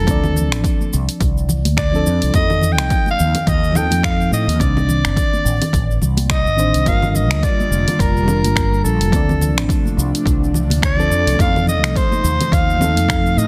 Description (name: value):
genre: sunset chillout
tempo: 106 BPM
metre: 4/4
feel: swing 57% on 16ths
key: unclear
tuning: A4 = 440 Hz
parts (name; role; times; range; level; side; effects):
- growling soprano saxophone; melody; 0.0-13.5 s; A4 to G5; -23 LUFS; equal; digital delay
- mellow FM electric piano; accompaniment; 0.0-13.5 s; Eb3 to D5; -26 LUFS; equal; chorus, digital delay
- mellow fretless electric bass; bass; 0.0-13.5 s; F1 to A2; -20 LUFS; equal; lush chorus
- deep house drum kit; drums; 0.1-13.5 s; congas, finger snaps, hi-hat, shaker; -25 LUFS; equal; soft clipping on snare
- electronic kick drum; drums; 0.1-13.2 s; none; -22 LUFS; equal; overdrive
- congas; percussion; 0.1-13.1 s; none; -28 LUFS; equal; none
- airy breathy pad; sustained chords; 6.9-13.5 s; C3 to F4; -27 LUFS; equal; chorus
room: light reverb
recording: dense, heavily limited modern master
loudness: -16 LUFS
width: mono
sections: 0.0-13.5 A section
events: none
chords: 0.1 Dm7; 2.3 F7; 4.6 Cm69; 6.9 Gm7; 9.1 Dm7; 11.4 F7